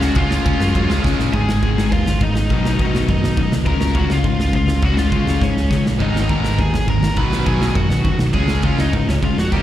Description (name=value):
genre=punk rock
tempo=205 BPM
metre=4/4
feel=straight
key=unclear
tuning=A4 = 441 Hz
part: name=bluesy overdriven lead guitar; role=melody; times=0.0-9.6 s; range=C#4 to B5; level=-25 LUFS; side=equal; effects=distortion, tape echo
part: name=distorted electric guitar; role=riff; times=0.0-9.6 s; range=G#2 to E#4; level=-23 LUFS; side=left 8 dB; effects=distortion, slapback echo
part: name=distorted electric guitar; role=riff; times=0.0-1.3, 6.0-9.6 s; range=G#2 to D#4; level=-27 LUFS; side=right 11 dB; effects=overdrive, slapback echo
part: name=sludgy distorted guitar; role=riff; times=0.0-9.6 s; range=G#2 to E#4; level=-24 LUFS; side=right 2 dB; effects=overdrive, slapback echo
part: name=picked electric bass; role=bass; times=0.0-9.6 s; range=G#1 to G#2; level=-19 LUFS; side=equal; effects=none
part: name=big rock drum kit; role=drums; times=0.0-9.6 s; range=crash cymbal, kick drum, ride cymbal, snare drum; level=-21 LUFS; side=equal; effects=none
room=little or no reverb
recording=live gig heard through the venue's PA, recital hall reverb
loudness=-15 LUFS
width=side -12 dB against mid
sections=0.0-1.3 A section; 1.3-9.6 B section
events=drum fill 1.0, 5.4-6.0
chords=0.0 C#; 1.3 G#m; 2.5 B; 3.7 C#; 6.0 G#m; 7.2 B; 8.3 C#